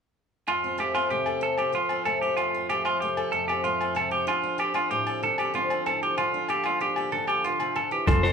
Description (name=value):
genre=highlife guitar band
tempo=126 BPM (dotted quarters)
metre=12/8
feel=straight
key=F major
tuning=A4 = 444 Hz
part: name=picked steel-string acoustic guitar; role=accompaniment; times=0.5-8.3 s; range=F2 to A4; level=-31 LUFS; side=left 2 dB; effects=none
part: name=semi-hollow electric guitar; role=arpeggios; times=0.5-8.3 s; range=F4 to C5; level=-26 LUFS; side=right 2 dB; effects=none
part: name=agogo bells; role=percussion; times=0.5-8.2 s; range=none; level=-32 LUFS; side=left 6 dB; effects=none
part: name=semi-hollow electric guitar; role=melody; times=8.1-8.3 s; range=F4 to C5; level=-24 LUFS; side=left 2 dB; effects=none
part: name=fingered electric bass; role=bass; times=8.1-8.3 s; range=F1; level=-24 LUFS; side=equal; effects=none
part: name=crunchy breakbeat drum kit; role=drums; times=8.1-8.3 s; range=hi-hat, kick drum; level=-24 LUFS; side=equal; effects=none
part: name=congas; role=percussion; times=8.1 s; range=none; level=-28 LUFS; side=left 3 dB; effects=none
room=moderate large studio reverb, RT60 0.9 s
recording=band playing live in one room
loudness=-24 LUFS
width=side -6 dB against mid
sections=0.5-8.1 A section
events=none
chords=0.5 Fadd9; 4.3 Dm7; 6.2 Bb6/D